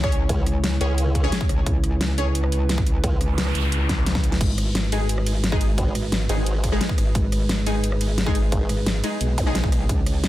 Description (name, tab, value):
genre	dark technical drum and bass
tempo	175 BPM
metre	4/4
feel	straight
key	G# minor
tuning	A4 = 440 Hz
part	dark analog pad	sustained chords	0.0-10.3 s	G#3 to C#5	-31 LUFS	right 1 dB	chorus, sidechain pumping
part	orchestra-hit-like synth stab	stabs	0.0-2.3, 4.9-9.6 s	G#3 to C#5	-29 LUFS	left 2 dB	built-in reverb, tape echo
part	metallic wobble bass	bass	0.0-10.3 s	G#1 to C#2	-23 LUFS	equal	chorus, tube saturation, sidechain pumping
part	dubstep drum kit	drums	0.0-10.3 s	crash cymbal, hi-hat, ride cymbal, rim click, snare drum	-27 LUFS	left 1 dB	none
part	electronic kick drum	drums	0.0-10.0 s	none	-23 LUFS	equal	none
part	formant-sweep wobble bass	bass	0.3-3.2, 5.8-8.7 s	G#1 to C#2	-22 LUFS	equal	chorus
part	noise sweep and zap	sound effects	3.2-4.4, 9.4-9.5 s	none	-31 LUFS	right 1 dB	none
room	little or no reverb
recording	dense, heavily limited modern master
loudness	-19 LUFS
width	side -15 dB against mid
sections	0.0-10.3 A section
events	noise sweep 3.2-4.4; drum fill 3.9-4.4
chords	0.0 C#m; 4.4 G#m7